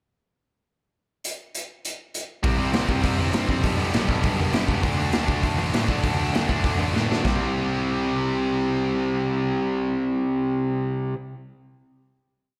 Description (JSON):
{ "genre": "punk rock", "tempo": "200 BPM", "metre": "4/4", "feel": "straight", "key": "C lydian", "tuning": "A4 = 441 Hz", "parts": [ { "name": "raw garage drum kit", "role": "drums", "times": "1.2-7.3 s", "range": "hi-hat, kick drum, snare drum", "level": "-27 LUFS", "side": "equal", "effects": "none" }, { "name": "distorted electric guitar", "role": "riff", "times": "2.4-11.2 s", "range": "G2 to D4", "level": "-29 LUFS", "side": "equal", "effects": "overdrive" }, { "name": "overdriven electric guitar", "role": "riff", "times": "2.4-11.2 s", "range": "B2 to G4", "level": "-29 LUFS", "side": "equal", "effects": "slapback echo" }, { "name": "warm baby grand piano", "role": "bass", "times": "2.4-11.1 s", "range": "F#1 to D3", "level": "-32 LUFS", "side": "equal", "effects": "none" } ], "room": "moderate scoring stage reverb, RT60 1.7 s, small room reverb", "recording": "big arena sound", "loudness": "-24 LUFS", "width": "mono", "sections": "1.2-2.4 pickup bar; 2.4-7.2 chorus; 7.2-9.6 final chord", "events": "drum fill 6.9-7.2", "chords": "1.2 N.C.; 2.4 C; 3.6 G/B; 4.8 D; 7.2 C", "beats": "| 1.23 1.54 1.84 2.14 | 2.44 2.74 3.04 3.34 | 3.64 3.94 4.25 4.54 | 4.84 5.14 5.44 5.74 | 6.04 6.34 6.64 6.94 | 7.24 7.54 7.84 8.14 | 8.44 8.74 9.04 9.34" }